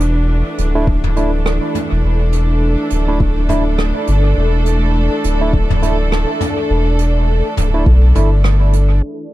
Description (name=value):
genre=ambient dub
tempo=103 BPM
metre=4/4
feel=swing 58% on 16ths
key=unclear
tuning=A4 = 438 Hz
part: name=rich symphonic string section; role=sustained chords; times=0.0-9.3 s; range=E3 to D5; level=-20 LUFS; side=right 1 dB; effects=none
part: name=soft dub sub bass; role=bass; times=0.0-9.0 s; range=D1 to B1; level=-14 LUFS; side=equal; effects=none
part: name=soft brush drum kit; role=drums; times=0.0-8.9 s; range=hi-hat, rim click, toms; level=-24 LUFS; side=equal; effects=low-pass filter on toms, low-pass filter on hats, low-pass filter on snare, low-pass filter on room, dub echo
part: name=bubbling stepped-filter texture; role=texture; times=0.2-9.3 s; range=F#4 to A4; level=-28 LUFS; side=left 2 dB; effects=chorus, built-in reverb
part: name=barky tine electric piano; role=stabs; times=0.8-8.3 s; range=A3 to E4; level=-23 LUFS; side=right 2 dB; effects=overdrive, low-pass filter, dub echo
part: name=electronic kick drum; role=drums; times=0.9-8.0 s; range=none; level=-17 LUFS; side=equal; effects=overdrive
room=little or no reverb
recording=low-pass filter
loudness=-12 LUFS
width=side -16 dB against mid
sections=0.0-9.0 A section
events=none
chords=0.0 Dsus2